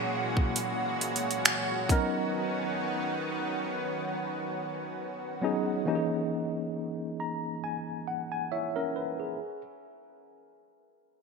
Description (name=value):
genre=contemporary R&B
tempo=68 BPM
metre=4/4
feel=swing 54% on 16ths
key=C# dorian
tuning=A4 = 443 Hz
part: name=tine electric piano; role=accompaniment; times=0.0-9.6 s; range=A#2 to A#5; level=-32 LUFS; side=equal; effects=medium stereo tremolo
part: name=lush unison pad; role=sustained chords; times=0.0-5.8 s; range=A#2 to F#4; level=-32 LUFS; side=right 1 dB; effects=chorus, sidechain pumping
part: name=trap drum kit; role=drums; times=0.4-2.1 s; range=finger snaps, hi-hat, kick drum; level=-27 LUFS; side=right 1 dB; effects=gated reverb
room=wet plate reverb, RT60 3.5 s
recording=bright 1980s-style digital production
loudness=-29 LUFS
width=side -4 dB against mid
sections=0.0-9.4 A section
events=tine electric piano fill 6.7-9.4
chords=0.0 F#9/A#; 1.9 Bmaj9; 5.9 C#m69